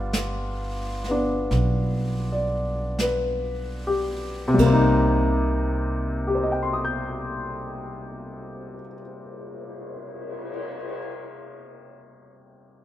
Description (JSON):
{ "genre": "jazz ballad", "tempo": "36-45 BPM", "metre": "4/4", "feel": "swing 69% on 8ths", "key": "C minor", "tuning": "A4 = 440 Hz", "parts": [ { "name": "clear upright piano", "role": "accompaniment", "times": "0.0-12.8 s", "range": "C3 to G6", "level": "-24 LUFS", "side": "left 1 dB", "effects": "none" }, { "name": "upright bass", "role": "bass", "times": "0.0-8.8 s", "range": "G1 to C2", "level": "-26 LUFS", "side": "equal", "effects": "none" }, { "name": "jazz brush drum kit", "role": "drums", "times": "0.1-11.0 s", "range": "brushed snare drum, cymbal swell, hi-hat, kick drum, ride cymbal, snare drum", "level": "-33 LUFS", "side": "equal", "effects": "none" } ], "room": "light reverb", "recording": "minimal, uncompressed stereo recording", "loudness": "-22 LUFS", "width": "side -13 dB against mid", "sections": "0.0-4.6 A section; 4.6-11.3 B section", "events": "slowing down 0.0-4.6", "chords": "0.0 G7; 4.6 Cm7", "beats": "0.14 1.51 2.99 | 4.59 6.26 7.93 9.60" }